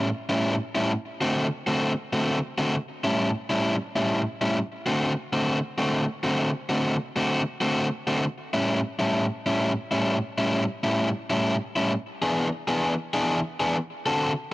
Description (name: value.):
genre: blues.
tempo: 131 BPM.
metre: 4/4.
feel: swing 66% on 8ths.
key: A mixolydian.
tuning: A4 = 441 Hz.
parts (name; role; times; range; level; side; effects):
overdriven semi-hollow guitar; solo; 0.0-14.3 s; A2 to A4; -23 LUFS; equal; tape echo.
room: moderate small room reverb, RT60 0.5 s.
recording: none.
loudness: -23 LUFS.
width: side -18 dB against mid.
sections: 0.0-14.5 A section.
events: none.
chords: 0.0 A7; 0.9 D7; 2.7 A7; 4.6 D7; 8.2 A7; 11.9 E7; 13.8 D7.